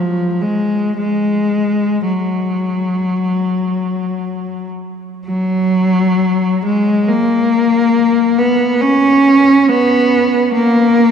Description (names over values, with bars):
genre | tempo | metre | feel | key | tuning
classical, free, expressive piece for unaccompanied cello | 44-71 BPM | 4/4 | rubato | F# major | A4 = 440 Hz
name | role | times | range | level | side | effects
rich cello | solo | 0.0-11.1 s | E#3 to C#4 | -12 LUFS | equal | none
room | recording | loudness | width
wet cathedral reverb, RT60 4.6 s | dark, warm production | -12 LUFS | side -7 dB against mid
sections
0.0-5.3 A section; 5.3-11.1 B section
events
none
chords
none